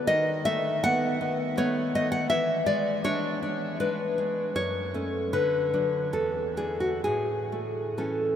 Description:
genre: romantic piece for solo classical guitar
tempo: 64-84 BPM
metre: 3/4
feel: rubato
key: unclear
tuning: A4 = 440 Hz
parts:
  - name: nylon-string guitar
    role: solo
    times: 0.0-8.4 s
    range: E2 to F#5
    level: -25 LUFS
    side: left 1 dB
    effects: none
room: wet huge ambient reverb, RT60 7.0 s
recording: in a vast, echoing space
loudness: -25 LUFS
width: side -9 dB against mid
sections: 0.0-8.4 A section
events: none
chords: 0.1 B7/D#; 2.3 E7; 4.6 F#m; 5.3 Bm/D; 6.1 E9; 7.0 A

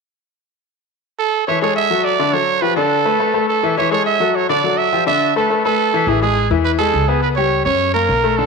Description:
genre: latin, salsa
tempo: 208 BPM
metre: 4/4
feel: straight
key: A major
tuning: A4 = 435 Hz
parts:
  - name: growling trumpet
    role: melody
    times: 1.2-8.5 s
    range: G#4 to E5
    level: -16 LUFS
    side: right 9 dB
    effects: none
  - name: bright grand piano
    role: accompaniment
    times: 1.5-8.5 s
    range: D3 to E5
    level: -18 LUFS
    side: left 10 dB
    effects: none
  - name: upright bass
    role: bass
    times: 6.1-8.5 s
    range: A1 to F#2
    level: -20 LUFS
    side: left 1 dB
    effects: none
room: wet echo chamber reverb, RT60 2.2 s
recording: 1960s-style stereo with parts hard left and right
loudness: -14 LUFS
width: side -4 dB against mid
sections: 0.3-1.5 A section; 1.5-6.1 B section; 6.1-8.5 C section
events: none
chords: 0.3 N.C.; 1.5 A5; 2.0 Dmaj7; 2.6 G9; 3.2 Esus4; 3.8 A5; 4.3 D; 4.9 G13; 5.5 Esus4; 6.1 Amaj7; 7.2 Gmaj7#11/C#; 7.8 F#

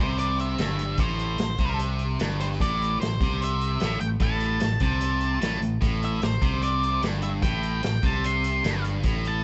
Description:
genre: blues rock power trio and southern rock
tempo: 149 BPM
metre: 4/4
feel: straight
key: A minor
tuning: A4 = 442 Hz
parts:
  - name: octave-fuzz lead guitar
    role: melody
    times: 0.0-9.4 s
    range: C5 to C6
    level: -32 LUFS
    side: equal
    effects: distortion
  - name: distorted electric guitar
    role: riff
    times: 0.0-9.4 s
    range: G2 to C3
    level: -31 LUFS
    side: equal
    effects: overdrive
  - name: growling fingered electric bass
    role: bass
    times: 0.0-9.4 s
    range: G1 to C2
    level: -30 LUFS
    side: equal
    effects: overdrive
  - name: vintage drum kit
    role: drums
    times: 0.2-9.3 s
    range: hi-hat, kick drum, snare drum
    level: -31 LUFS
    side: equal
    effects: none
room: light reverb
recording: band playing live in one room, nothing above 7.9 kHz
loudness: -25 LUFS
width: mono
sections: 0.0-9.4 A section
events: none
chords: 0.0 Am

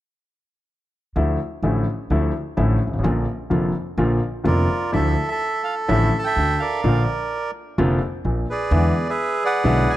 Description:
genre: tango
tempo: 127 BPM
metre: 4/4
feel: rubato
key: unclear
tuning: A4 = 440 Hz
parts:
  - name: clear concert grand piano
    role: accompaniment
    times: 1.2-9.8 s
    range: F1 to F4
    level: -21 LUFS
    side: left 1 dB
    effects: none
  - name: upright bass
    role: bass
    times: 1.2-9.8 s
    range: F1 to E2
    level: -22 LUFS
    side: right 1 dB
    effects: none
  - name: bandoneon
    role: melody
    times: 4.5-10.0 s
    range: F4 to A5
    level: -22 LUFS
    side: right 2 dB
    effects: none
room: small room ambience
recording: dry, close 1970s-style studio recording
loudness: -19 LUFS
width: side -14 dB against mid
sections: 1.2-4.9 A section; 4.9-10.0 B section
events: none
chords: 1.2 Dmadd9; 3.0 Bb; 4.9 Dmadd9; 6.8 Bb; 8.7 E7

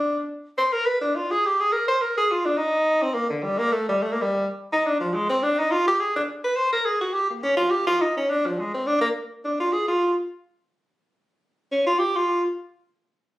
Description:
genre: jazz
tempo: 210 BPM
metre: 4/4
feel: swing 59% on 8ths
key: Bb mixolydian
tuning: A4 = 440 Hz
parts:
  - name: warm tenor saxophone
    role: solo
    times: 0.0-12.4 s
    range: D3 to C5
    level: -21 LUFS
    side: equal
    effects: none
room: moderate studio reverb, RT60 0.5 s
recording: recorded on a phone in the room, studio reverb, compression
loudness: -21 LUFS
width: side -17 dB against mid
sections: 0.0-6.0 A section; 6.0-13.4 A section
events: tenor saxophone solo 0.0-13.4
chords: none

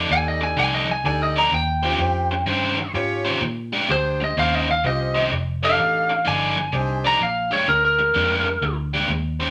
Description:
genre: electric blues shuffle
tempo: 127 BPM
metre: 4/4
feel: swing 66% on 8ths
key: unclear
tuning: A4 = 441 Hz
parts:
  - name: biting overdriven guitar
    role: riff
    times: 0.0-9.5 s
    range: Bb2 to D5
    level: -26 LUFS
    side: equal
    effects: none
  - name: vintage muted fingered electric bass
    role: bass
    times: 0.0-9.5 s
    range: F1 to Bb2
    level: -29 LUFS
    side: equal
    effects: none
  - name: lightly driven lead guitar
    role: melody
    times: 0.1-8.8 s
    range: Bb4 to Bb5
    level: -23 LUFS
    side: equal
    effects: none
  - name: clear saxophone section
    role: stabs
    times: 0.1-7.2 s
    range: Db4 to D5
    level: -30 LUFS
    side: equal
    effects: none
room: wet studio reverb, RT60 0.6 s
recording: none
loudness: -21 LUFS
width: mono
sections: 0.0-7.2 A section; 7.2-9.5 A section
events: lead electric guitar solo 0.0-9.5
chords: 0.0 F13; 1.5 Eb13; 3.4 Bb13; 4.4 Eb13; 5.3 F13; 7.2 Bb6

